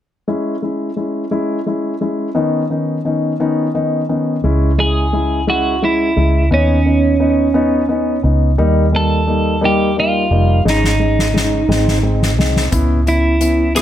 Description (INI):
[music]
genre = six-eight pop ballad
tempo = 58 BPM (dotted quarters)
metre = 6/8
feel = straight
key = C# minor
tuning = A4 = 441 Hz
[part]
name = dark grand piano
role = accompaniment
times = 0.3-13.8 s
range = D#3 to E4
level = -17 LUFS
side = left 2 dB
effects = none
[part]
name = vintage muted fingered electric bass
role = bass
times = 4.4-13.8 s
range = E#1 to D#2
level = -16 LUFS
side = equal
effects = none
[part]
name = twelve-string electric guitar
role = melody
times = 4.8-13.8 s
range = C#4 to A4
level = -17 LUFS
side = right 3 dB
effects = none
[part]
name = soft-mallet drum kit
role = drums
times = 10.7-13.8 s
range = hi-hat, kick drum, rim click, snare drum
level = -19 LUFS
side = left 1 dB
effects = none
[sound]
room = light reverb, studio ambience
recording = none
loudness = -13 LUFS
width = side -11 dB against mid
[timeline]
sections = 0.3-4.4 A section; 4.4-13.8 B section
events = drum fill 10.7-12.7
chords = 0.3 C#m; 2.4 Badd9/D#; 4.4 C#m; 6.5 Badd9/D#; 8.6 D#; 10.7 G#sus4; 11.7 G#; 12.7 C#m7